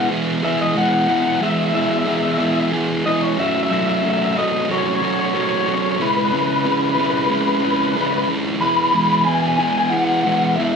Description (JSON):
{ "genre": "rock", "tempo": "92 BPM", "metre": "4/4", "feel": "straight", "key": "E major", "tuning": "A4 = 441 Hz", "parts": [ { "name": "electric guitar through a small old amp", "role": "melody", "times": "0.0-10.8 s", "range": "B4 to B5", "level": "-19 LUFS", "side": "left 3 dB", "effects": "harmonic tremolo" }, { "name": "fuzz guitar", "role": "riff", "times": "0.0-10.8 s", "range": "C#3 to G#4", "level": "-19 LUFS", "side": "right 2 dB", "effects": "distortion" } ], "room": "wet studio ambience, RT60 0.5 s", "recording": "band playing live in one room", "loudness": "-16 LUFS", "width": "side -6 dB against mid", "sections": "0.0-10.8 A section", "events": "none", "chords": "0.0 E; 3.4 F#m7; 6.0 C#m7; 8.6 E", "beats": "0.11 | 0.76 1.42 2.07 2.73 | 3.38 4.04 4.69 5.34 | 6.00 6.65 7.30 7.96 | 8.61 9.26 9.92 10.57" }